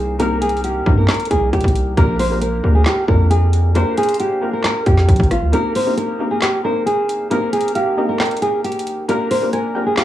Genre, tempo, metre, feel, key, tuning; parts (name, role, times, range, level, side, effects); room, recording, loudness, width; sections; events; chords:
hip hop, trap; 135 BPM; 4/4; half-time; C minor; A4 = 435 Hz
nylon-string guitar; melody; 0.0-10.0 s; F4 to C5; -19 LUFS; right 1 dB; low-pass filter, tape echo
felt-muted upright piano; accompaniment; 0.0-10.0 s; Bb3 to C5; -23 LUFS; left 2 dB; low-pass filter
distorted 808-style bass; bass; 0.0-5.5 s; Ab1 to G2; -16 LUFS; equal; distortion
trap drum kit; drums; 0.2-10.0 s; handclaps, hi-hat, kick drum, rim click, snare drum; -19 LUFS; equal
soft round pluck; second line; 7.8-10.0 s; Eb5 to Ab5; -26 LUFS; right 5 dB; chorus, tape echo
digital ambience; worn, warbling old tape, cassette tape, warbly pitch drift, small room ambience; -14 LUFS; side -12 dB against mid
0.0-10.0 A section
break 5.5-10.0
0.0 Cm7; 2.0 Bb6; 5.5 Cm7; 9.1 Bb6